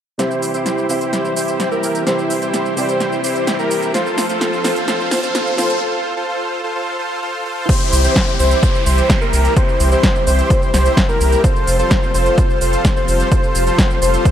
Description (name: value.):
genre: EDM, festival progressive house.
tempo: 128 BPM.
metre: 4/4.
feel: straight.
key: unclear.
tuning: A4 = 440 Hz.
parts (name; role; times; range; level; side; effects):
dark baby grand piano; accompaniment; 0.2-7.7 s; C3 to F5; -25 LUFS; right 1 dB; sidechain pumping, dub echo.
lush unison pad; sustained chords; 0.2-14.3 s; E3 to C4; -26 LUFS; left 1 dB; chorus, sidechain pumping.
wide unison lead; arpeggios; 0.2-14.3 s; Bb4 to C5; -21 LUFS; left 1 dB; sidechain pumping, dub echo.
dense compressed supersaw; riff; 0.2-14.3 s; E4 to C5; -21 LUFS; right 1 dB; sidechain pumping, low-pass filter, dub echo.
big-room dance drum kit; drums; 0.2-14.3 s; cabasa, crash cymbal, hi-hat, snare drum; -22 LUFS; equal; overdrive.
riser and downlifter; sound effects; 3.2-11.4 s; none; -28 LUFS; left 1 dB; none.
saturated sub bass; bass; 0.4-14.2 s; F1 to C2; -17 LUFS; equal; sidechain pumping, high-pass filter.
electronic kick drum; drums; 7.7-14.3 s; none; -16 LUFS; equal; overdrive.
room: light reverb, digital ambience.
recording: high-pass filter.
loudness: -14 LUFS.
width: side -10 dB against mid.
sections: 0.2-7.7 A section; 7.7-14.3 B section.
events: build-up 0.2-7.7; drum fill 0.2-5.8; filter sweep on supersaw synth 0.2-7.7; filter sweep on analog synth lead 0.2-7.7; riser 3.2-5.8; break 5.8-7.7; drop 7.7-14.3.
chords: 0.2 C; 3.9 F; 7.7 C; 11.4 F.